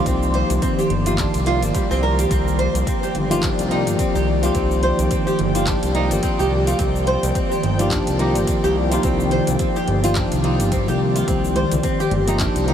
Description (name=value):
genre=organic downtempo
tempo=107 BPM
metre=4/4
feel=swing 57% on 16ths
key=C minor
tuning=A4 = 438 Hz
part: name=tine electric piano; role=accompaniment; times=0.0-12.7 s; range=Eb3 to G4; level=-23 LUFS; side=left 2 dB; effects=sidechain pumping, analog delay
part: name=ethereal airy pad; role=sustained chords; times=0.0-12.7 s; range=Eb3 to C6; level=-25 LUFS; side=equal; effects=ensemble chorus, built-in reverb, phaser, sidechain pumping
part: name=flamenco guitar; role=arpeggios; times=0.0-12.7 s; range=G3 to C5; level=-23 LUFS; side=right 1 dB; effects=lush chorus, analog delay
part: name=smooth synth bass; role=bass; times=0.1-12.7 s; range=G1 to C2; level=-22 LUFS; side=equal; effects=sidechain pumping
part: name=deep house drum kit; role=drums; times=0.1-12.7 s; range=cabasa, handclaps, hi-hat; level=-31 LUFS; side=left 1 dB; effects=overdrive
part: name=electronic kick drum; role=drums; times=0.1-12.5 s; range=none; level=-24 LUFS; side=equal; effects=overdrive
part: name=congas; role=percussion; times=11.6-12.2 s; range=none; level=-30 LUFS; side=left 2 dB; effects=none
room=wet huge ambient reverb, RT60 7.7 s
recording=dreamy mix soaked in reverb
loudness=-17 LUFS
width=side -9 dB against mid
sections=0.0-12.7 A section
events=none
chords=0.0 Cmadd9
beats=| 0.06 0.62 1.18 1.75 | 2.31 2.87 3.43 3.99 | 4.55 5.11 5.67 6.23 | 6.79 7.35 7.91 8.47 | 9.04 9.60 10.16 10.72 | 11.28 11.84 12.40